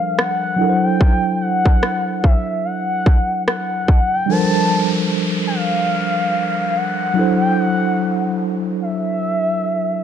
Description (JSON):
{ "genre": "contemporary R&B", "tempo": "73 BPM", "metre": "4/4", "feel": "swing 58% on 16ths", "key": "G dorian", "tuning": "A4 = 439 Hz", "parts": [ { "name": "gliding portamento lead", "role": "melody", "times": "0.0-10.0 s", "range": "E5 to A5", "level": "-20 LUFS", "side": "left 1 dB", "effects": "chorus, low-pass filter, ping-pong delay" }, { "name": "mellow tine electric piano", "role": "accompaniment", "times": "0.0-10.0 s", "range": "F3 to C5", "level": "-20 LUFS", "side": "right 1 dB", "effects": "medium stereo tremolo, low-pass filter" }, { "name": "trap drum kit", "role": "drums", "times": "0.2-4.1 s", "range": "kick drum, rim click", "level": "-15 LUFS", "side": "equal", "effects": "vintage 12-bit sampler grit" }, { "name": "downlifter", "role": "sound effects", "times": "4.3-10.0 s", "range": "none", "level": "-28 LUFS", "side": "equal", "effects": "none" } ], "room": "light reverb, digital ambience", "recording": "dark, warm production", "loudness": "-15 LUFS", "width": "side -9 dB against mid", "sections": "0.0-4.3 A section; 4.3-10.0 B section", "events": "none", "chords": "0.0 Gm11; 0.6 D9/F#; 4.3 Gm11; 7.2 D9/F#", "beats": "0.18 | 1.01 1.83 2.65 3.47 | 4.29 5.12 5.94 6.76 | 7.58 8.40 9.22" }